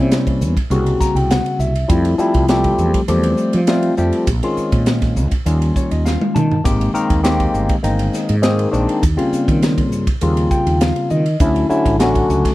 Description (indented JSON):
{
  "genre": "electric jazz fusion",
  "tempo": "101 BPM",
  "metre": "4/4",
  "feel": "straight",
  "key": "unclear",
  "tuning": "A4 = 441 Hz",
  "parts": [
    { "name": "barky tine electric piano", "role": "accompaniment", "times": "0.0-12.5 s", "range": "Db3 to Bb5", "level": "-17 LUFS", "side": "left 2 dB", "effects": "phaser" },
    { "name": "mellow fretless electric bass", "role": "bass", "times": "0.0-12.4 s", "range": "G1 to F3", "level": "-18 LUFS", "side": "right 1 dB", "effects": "none" },
    { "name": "crisp fusion drum kit", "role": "drums", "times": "0.1-12.5 s", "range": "hi-hat, kick drum, ride cymbal, snare drum, splash cymbal, toms", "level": "-20 LUFS", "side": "equal", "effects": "none" }
  ],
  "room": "little or no reverb",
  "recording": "none",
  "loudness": "-14 LUFS",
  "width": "side -17 dB against mid",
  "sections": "0.0-12.5 A section",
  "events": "tine electric piano fill 0.7-1.9, 5.5-6.7, 10.2-11.4; drum fill 6.1-6.7",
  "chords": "0.0 C7b9; 1.9 Fmaj9; 4.3 Bbm11; 5.5 Eb9; 6.7 G#maj9; 9.0 Eb13; 11.4 Dmaj7"
}